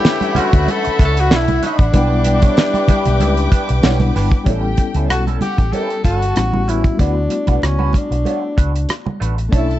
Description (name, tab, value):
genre	lush 1970s-style soul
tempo	95 BPM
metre	4/4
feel	swing 54% on 16ths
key	D major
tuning	A4 = 440 Hz
part	mellow tenor saxophone	melody	0.0-9.8 s	C#4 to A4	-20 LUFS	left 1 dB	none
part	warm studio violin section	second line	0.0-9.8 s	G4 to D6	-25 LUFS	left 2 dB	none
part	reed electric piano	accompaniment	0.0-9.8 s	G3 to F#5	-24 LUFS	left 4 dB	fast tremolo
part	electric guitar through a small old amp	riff	0.0-9.7 s	G3 to D5	-27 LUFS	right 7 dB	wah, wide subtle chorus
part	mellow horn section	stabs	0.0-4.1 s	E3 to G4	-24 LUFS	left 5 dB	analog delay
part	damped 70s drum kit	drums	0.0-9.8 s	hi-hat, kick drum, rim click, snare drum	-15 LUFS	equal	none
part	congas	percussion	0.0-9.7 s	none	-24 LUFS	right 4 dB	none
part	tambourine	percussion	0.1-4.0 s	none	-36 LUFS	left 7 dB	none
part	vintage muted fingered electric bass	bass	0.4-9.8 s	G1 to D2	-18 LUFS	equal	none
room	small room reverb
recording	dark, warm production, nothing above 8.0 kHz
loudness	-13 LUFS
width	side -14 dB against mid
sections	0.0-4.5 A section; 4.5-9.8 B section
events	none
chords	0.0 Bm11; 1.9 Em7/B; 4.5 A7; 6.4 A13; 7.0 D6